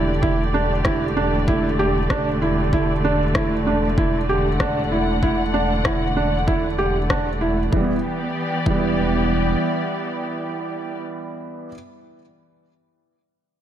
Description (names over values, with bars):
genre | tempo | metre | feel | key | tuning
piano and strings electronica | 96 BPM | 4/4 | straight | E minor | A4 = 440 Hz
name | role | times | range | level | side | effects
muted studio string section | sustained chords | 0.0-11.0 s | D3 to F#5 | -24 LUFS | left 1 dB | none
felt-muted upright piano | riff | 0.0-11.7 s | E3 to G4 | -23 LUFS | right 3 dB | digital delay
round analog bass | bass | 0.0-9.6 s | E1 | -25 LUFS | equal | tube saturation, sidechain pumping
electronic kick drum | drums | 0.2-8.9 s | none | -25 LUFS | equal | overdrive
electronic rim click | drums | 0.8-7.2 s | none | -28 LUFS | left 2 dB | none
room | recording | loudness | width
moderate concert hall reverb, RT60 2.1 s | none | -18 LUFS | side -10 dB against mid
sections
0.0-7.7 A section; 7.7-10.2 B section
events
none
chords
0.0 Dsus4/E; 7.7 Em7